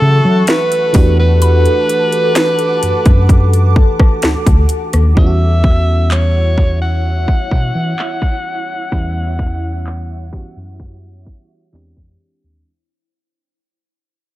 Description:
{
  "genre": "contemporary R&B",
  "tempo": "64 BPM",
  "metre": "4/4",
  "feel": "straight",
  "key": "E dorian",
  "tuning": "A4 = 440 Hz",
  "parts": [
    { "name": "breathy alto saxophone", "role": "melody", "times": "0.0-11.7 s", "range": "A4 to F#5", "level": "-18 LUFS", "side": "equal", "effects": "none" },
    { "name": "FM electric piano", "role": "accompaniment", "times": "0.0-12.7 s", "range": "E3 to G4", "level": "-22 LUFS", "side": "right 2 dB", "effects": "chorus" },
    { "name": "granular cloud pad", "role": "sustained chords", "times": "0.0-12.7 s", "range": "E4 to D6", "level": "-22 LUFS", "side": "left 2 dB", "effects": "built-in reverb" },
    { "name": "mellow tine electric piano", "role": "bass", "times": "0.0-12.6 s", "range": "D2 to F#3", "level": "-13 LUFS", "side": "equal", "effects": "none" },
    { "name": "trap drum kit", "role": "drums", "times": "0.5-12.2 s", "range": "handclaps, hi-hat, kick drum, rim click, snare drum", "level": "-13 LUFS", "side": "equal", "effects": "overdrive" },
    { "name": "mallet-like synth pluck", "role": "texture", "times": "1.4-2.3 s", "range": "B5", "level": "-28 LUFS", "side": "left 5 dB", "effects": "chorus, tape echo" }
  ],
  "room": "little or no reverb",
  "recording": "low-pass filter",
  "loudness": "-11 LUFS",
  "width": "side -16 dB against mid",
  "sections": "0.0-5.2 A section; 5.2-12.7 B section",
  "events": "fade-out 5.2-12.7; filter sweep 5.2-12.7",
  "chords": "0.0 F#m7; 0.9 Em11; 5.2 Em69; 11.7 E7alt"
}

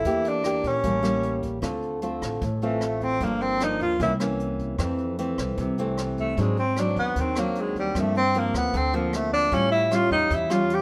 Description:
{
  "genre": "bossa nova",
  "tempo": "152 BPM",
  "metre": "4/4",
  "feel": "straight",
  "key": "D minor",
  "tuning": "A4 = 439 Hz",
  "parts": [
    { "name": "breathy tenor saxophone", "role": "melody", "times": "0.0-10.8 s", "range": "E3 to G4", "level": "-26 LUFS", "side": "equal", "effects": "none" },
    { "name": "nylon-string guitar", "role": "accompaniment", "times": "0.0-10.8 s", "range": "F2 to G4", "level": "-30 LUFS", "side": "equal", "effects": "none" },
    { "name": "upright bass", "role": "bass", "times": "0.0-10.8 s", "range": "G1 to Bb2", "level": "-32 LUFS", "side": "equal", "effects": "none" },
    { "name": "jazz brush drum kit", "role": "drums", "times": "0.0-10.8 s", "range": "hi-hat, kick drum, rim click", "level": "-38 LUFS", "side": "equal", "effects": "none" }
  ],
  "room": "light reverb",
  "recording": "none",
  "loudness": "-25 LUFS",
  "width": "mono",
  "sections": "0.0-1.6 A section; 1.6-10.8 B section",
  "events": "tenor saxophone solo 1.6-10.8",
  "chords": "0.1 Em7b5; 0.8 A7b9; 1.6 Dm7; 3.2 Gm7; 4.0 C7b9; 4.8 Fmaj7; 6.4 G#7#11; 7.9 Gm7; 9.5 A7b13"
}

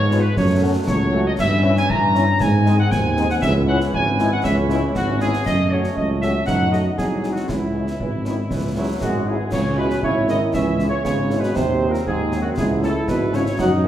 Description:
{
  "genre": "military-style march for wind band",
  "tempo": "118 BPM",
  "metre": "2/4",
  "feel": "straight",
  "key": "C# minor",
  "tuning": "A4 = 440 Hz",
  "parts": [
    { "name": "mellow trumpet section", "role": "melody", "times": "0.0-13.9 s", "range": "E4 to Bb5", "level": "-24 LUFS", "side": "equal", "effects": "none" },
    { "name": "clear trombone section", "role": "sustained chords", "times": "0.0-13.9 s", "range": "D#3 to E4", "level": "-26 LUFS", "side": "right 2 dB", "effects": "none" },
    { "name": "mellow tuba", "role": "bass", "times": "0.0-13.9 s", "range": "G#1 to G#2", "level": "-20 LUFS", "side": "equal", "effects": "none" },
    { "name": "warm French horn section", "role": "accompaniment", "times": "0.1-13.9 s", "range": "Gb3 to A4", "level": "-28 LUFS", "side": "left 3 dB", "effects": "none" },
    { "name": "concert snare drum, concert bass drum and clash cymbals", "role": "drums", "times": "0.1-13.8 s", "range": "none", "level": "-28 LUFS", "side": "left 1 dB", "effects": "none" },
    { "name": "warm euphonium", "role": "second line", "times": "8.8-13.9 s", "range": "E2 to F#3", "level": "-24 LUFS", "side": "right 2 dB", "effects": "none" }
  ],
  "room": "wet recital hall reverb, RT60 1.4 s",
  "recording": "heard from further back in the room",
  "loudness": "-17 LUFS",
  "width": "side -11 dB against mid",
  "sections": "0.0-9.5 A section; 9.5-13.9 A section",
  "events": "none",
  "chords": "0.4 F#m; 1.4 Gdim7; 2.4 G#; 3.4 C#m; 5.5 F#m; 6.5 D#dim/F#; 7.0 G#7/B#; 7.5 C#m; 11.6 Cdim/Eb; 12.6 C#m"
}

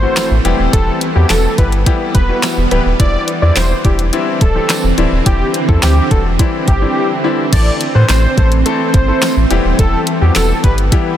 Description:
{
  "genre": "dance-pop",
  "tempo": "106 BPM",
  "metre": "4/4",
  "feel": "straight",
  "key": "A dorian",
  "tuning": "A4 = 440 Hz",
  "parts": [
    { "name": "wide unison lead", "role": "melody", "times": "0.0-10.7 s", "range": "G4 to D5", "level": "-19 LUFS", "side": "equal", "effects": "sidechain pumping, analog delay" },
    { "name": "clear grand piano", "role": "accompaniment", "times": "0.0-11.2 s", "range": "E3 to B4", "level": "-20 LUFS", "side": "left 7 dB", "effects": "sidechain pumping" },
    { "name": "shimmering ambient pad", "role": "sustained chords", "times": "0.0-11.2 s", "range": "D3 to C4", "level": "-19 LUFS", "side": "right 3 dB", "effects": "chorus, built-in reverb, sidechain pumping" },
    { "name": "warm sub bass", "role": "bass", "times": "0.0-10.9 s", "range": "D1 to A2", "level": "-14 LUFS", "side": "equal", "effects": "sidechain pumping" },
    { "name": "impact", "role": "sound effects", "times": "0.3-0.7 s", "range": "none", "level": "barely audible", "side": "none", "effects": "none" },
    { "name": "smooth R&B drum kit", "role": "drums", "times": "0.2-11.1 s", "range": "crash cymbal, handclaps, hi-hat, kick drum, snare drum", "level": "-16 LUFS", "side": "equal", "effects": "none" },
    { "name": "tambourine", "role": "percussion", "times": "0.2-10.5 s", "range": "none", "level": "-31 LUFS", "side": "right 6 dB", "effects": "none" }
  ],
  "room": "light reverb",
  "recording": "none",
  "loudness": "-10 LUFS",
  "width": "side -11 dB against mid",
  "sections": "0.0-7.5 A section; 7.5-11.2 A section",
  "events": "drop 0.0-7.5, 7.5-11.2; impact 0.0-0.7; silent gap 7.0-7.5",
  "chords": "0.4 Em; 3.0 Cadd9; 7.5 Am; 9.5 Em"
}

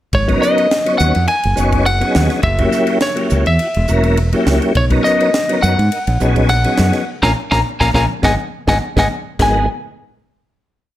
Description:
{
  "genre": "electric jazz fusion",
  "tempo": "104 BPM",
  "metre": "4/4",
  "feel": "swing 53% on 16ths",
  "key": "G# minor",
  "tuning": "A4 = 440 Hz",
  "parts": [
    { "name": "lightly driven lead guitar", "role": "melody", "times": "0.1-9.7 s", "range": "C#5 to A#5", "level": "-17 LUFS", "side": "left 1 dB", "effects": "none" },
    { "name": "modern bright fingered electric bass", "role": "bass", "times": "0.1-9.7 s", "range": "E1 to G#2", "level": "-16 LUFS", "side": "equal", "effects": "none" },
    { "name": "crisp fusion drum kit", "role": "drums", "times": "0.1-9.5 s", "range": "hi-hat, kick drum, ride cymbal, snare drum", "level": "-22 LUFS", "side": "right 1 dB", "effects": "none" },
    { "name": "tonewheel organ", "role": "accompaniment", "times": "0.3-9.7 s", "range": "F#3 to C#5", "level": "-18 LUFS", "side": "left 1 dB", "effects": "chorus vibrato, fast rotary speaker" }
  ],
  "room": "light reverb",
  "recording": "none",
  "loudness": "-12 LUFS",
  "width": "side -14 dB against mid",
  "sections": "0.1-9.4 A section; 9.4-11.0 final chord",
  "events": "band accent 7.1-9.4; drum fill 8.8-9.4",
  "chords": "0.1 G#m11; 2.4 F#7b9; 4.8 Bmaj9; 7.1 A#m7; 8.2 G#m7; 9.4 G#m9"
}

